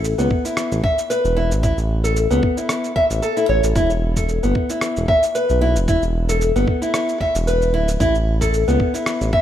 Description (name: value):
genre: organic downtempo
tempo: 113 BPM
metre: 4/4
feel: swing 54% on 16ths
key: unclear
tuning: A4 = 440 Hz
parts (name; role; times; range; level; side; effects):
- nylon-string guitar; arpeggios; 0.0-9.4 s; B3 to E5; -19 LUFS; left 1 dB; ping-pong delay
- smooth synth bass; bass; 0.0-9.3 s; D1 to C#2; -19 LUFS; equal; none
- electronic cabasa and rim click; drums; 0.0-9.3 s; none; -28 LUFS; right 1 dB; none
- electronic kick drum; drums; 0.3-9.4 s; none; -22 LUFS; equal; none
room: moderate plate reverb, RT60 2.5 s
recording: rough home demo mix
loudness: -16 LUFS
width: side -11 dB against mid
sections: 0.0-9.4 A section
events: none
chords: 0.0 A5; 3.8 E5; 8.0 A5